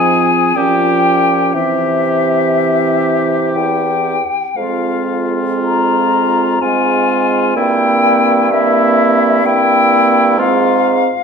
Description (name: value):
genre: classical, slow romantic movement for wind quintet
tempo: 55-65 BPM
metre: 3/4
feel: rubato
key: F minor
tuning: A4 = 440 Hz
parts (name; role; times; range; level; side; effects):
- silver concert flute; melody; 0.0-11.2 s; E5 to Bb5; -15 LUFS; left 6 dB; none
- mellow oboe; second line; 0.0-11.1 s; E4 to Ab4; -18 LUFS; left 1 dB; none
- dark clarinet; accompaniment; 0.0-11.1 s; C4 to Db4; -20 LUFS; right 7 dB; none
- warm French horn; accompaniment; 0.0-11.1 s; E3 to Bb3; -21 LUFS; right 2 dB; none
- warm bassoon; bass; 0.0-11.1 s; E2 to C3; -18 LUFS; right 4 dB; none
room: wet recital hall reverb, RT60 1.8 s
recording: minimal, uncompressed stereo recording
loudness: -11 LUFS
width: side -6 dB against mid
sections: 0.0-11.2 A section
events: none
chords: 0.0 Fm/Ab; 0.6 Gm7b5/Bb; 1.5 C; 4.6 Fm; 7.6 C7/G; 10.4 Fm/Ab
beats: 0.56 | 1.54 2.54 3.55 | 4.57 5.63 6.61 | 7.56 8.51 9.45 | 10.38